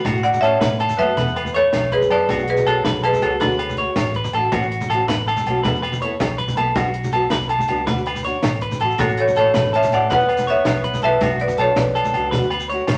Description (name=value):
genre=highlife guitar band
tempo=108 BPM (dotted quarters)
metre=12/8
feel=straight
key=A major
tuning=A4 = 440 Hz
part: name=electric guitar at the edge of break-up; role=arpeggios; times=0.0-13.0 s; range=F#4 to C#5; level=-25 LUFS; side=equal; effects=none
part: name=congas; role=percussion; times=0.0-13.0 s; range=none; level=-29 LUFS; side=equal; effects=none
part: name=picked old ladder-braced acoustic guitar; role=accompaniment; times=0.1-12.8 s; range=E3 to A4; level=-30 LUFS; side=equal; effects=none
part: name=vintage muted fingered electric bass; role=bass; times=0.1-13.0 s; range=E1 to A2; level=-30 LUFS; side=equal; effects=none
part: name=compact cocktail drum kit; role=drums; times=0.1-13.0 s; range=hi-hat, kick drum, snare drum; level=-30 LUFS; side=equal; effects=none
part: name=agogo bells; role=percussion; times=0.1-13.0 s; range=none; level=-33 LUFS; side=equal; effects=none
part: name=shekere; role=percussion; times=0.1-13.0 s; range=none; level=-34 LUFS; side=equal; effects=none
part: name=marimba with hard mallets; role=melody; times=0.2-4.1, 9.0-12.8 s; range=F#4 to F#5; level=-21 LUFS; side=equal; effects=none
part: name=breathy alto saxophone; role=second line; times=0.2-4.1, 9.0-12.8 s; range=F#3 to D4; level=-32 LUFS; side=equal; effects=none
room=wet studio reverb, RT60 0.8 s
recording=none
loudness=-19 LUFS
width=mono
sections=0.1-13.0 A section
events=none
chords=0.1 A6; 1.2 Esus4; 2.3 Bm; 3.4 D; 4.5 A6; 5.6 Esus4; 6.8 Bm; 7.9 D; 9.0 A6; 10.1 Esus4; 11.2 Bm; 12.3 D